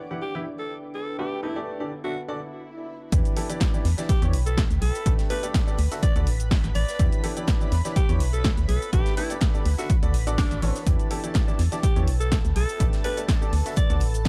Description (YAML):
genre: piano house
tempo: 124 BPM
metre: 4/4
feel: swing 54% on 16ths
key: E dorian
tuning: A4 = 439 Hz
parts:
  - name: analog string pad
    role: sustained chords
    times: 0.0-14.3 s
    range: A4 to D6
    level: -43 LUFS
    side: equal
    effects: ensemble chorus, sidechain pumping
  - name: deep dark ambient pad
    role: texture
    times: 0.0-14.3 s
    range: D4 to C#6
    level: -44 LUFS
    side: equal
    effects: chorus, built-in reverb, sidechain pumping
  - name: bright baby grand piano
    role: riff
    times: 0.1-14.0 s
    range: D3 to F#5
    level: -35 LUFS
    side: equal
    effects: sidechain pumping, tape echo
  - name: growling alto saxophone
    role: melody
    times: 0.2-13.9 s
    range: D4 to D5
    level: -35 LUFS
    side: equal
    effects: none
  - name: swell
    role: sound effects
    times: 2.4-3.1 s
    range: none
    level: -44 LUFS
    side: equal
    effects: none
  - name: organ-like FM bass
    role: bass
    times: 3.1-14.3 s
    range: A1 to E2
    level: -26 LUFS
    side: equal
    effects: sidechain pumping
  - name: electronic kick drum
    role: drums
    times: 3.1-14.3 s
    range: none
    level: -25 LUFS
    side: equal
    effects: none
  - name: gated 80s drum kit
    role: drums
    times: 3.1-14.3 s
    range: hi-hat, snare drum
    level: -46 LUFS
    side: equal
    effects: none
  - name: punchy analog drum machine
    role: drums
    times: 3.1-14.3 s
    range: hi-hat, shaker, snare drum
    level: -35 LUFS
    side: equal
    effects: none
room: studio reverb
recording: dark, warm production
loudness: -24 LUFS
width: mono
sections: 0.0-3.1 A section; 3.1-14.3 B section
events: swell 2.4-3.1; stop 2.6-3.1; drop 3.1-14.3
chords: 0.0 Em7; 1.2 A9sus4; 1.9 D; 3.1 Em7; 5.1 A9sus4; 5.8 Dmaj7; 7.0 Em7; 8.9 A9sus4; 9.7 Dmaj7; 10.9 Em7; 12.8 A9sus4; 13.5 Dmaj7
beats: 0.22 0.70 | 1.19 1.67 2.16 2.64 | 3.12 3.61 4.09 4.58 | 5.06 5.54 6.03 6.51 | 6.99 7.48 7.96 8.45 | 8.93 9.41 9.90 10.38 | 10.87 11.35 11.83 12.32 | 12.80 13.29 13.77 14.25